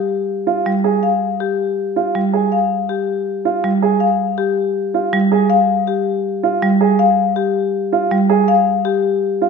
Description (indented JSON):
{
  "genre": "classical, minimalist pattern music",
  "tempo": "161 BPM",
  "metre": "4/4",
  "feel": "straight",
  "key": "unclear",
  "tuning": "A4 = 441 Hz",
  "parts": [
    { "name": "marimba with medium hard mallets", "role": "melody", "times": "0.0-9.1 s", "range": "G4 to F5", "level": "-18 LUFS", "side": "left 9 dB", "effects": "none" },
    { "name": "warm baby grand piano", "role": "arpeggios", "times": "0.5-9.5 s", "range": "F4 to Ab4", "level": "-19 LUFS", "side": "right 6 dB", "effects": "none" },
    { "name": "marimba with hard mallets", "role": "accompaniment", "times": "0.7-8.4 s", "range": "G3", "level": "-19 LUFS", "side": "right 4 dB", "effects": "none" }
  ],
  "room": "wet scoring stage reverb, RT60 1.5 s",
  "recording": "minimal, uncompressed stereo recording",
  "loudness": "-14 LUFS",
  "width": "side -5 dB against mid",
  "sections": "0.0-9.5 A section",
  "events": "none",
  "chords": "0.0 Fmadd9/G",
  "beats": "0.28 0.66 | 1.03 1.40 1.77 2.15 | 2.52 2.89 3.27 3.64 | 4.01 4.38 4.76 5.13 | 5.50 5.87 6.25 6.62 | 6.99 7.37 7.74 8.11 | 8.48 8.86 9.23"
}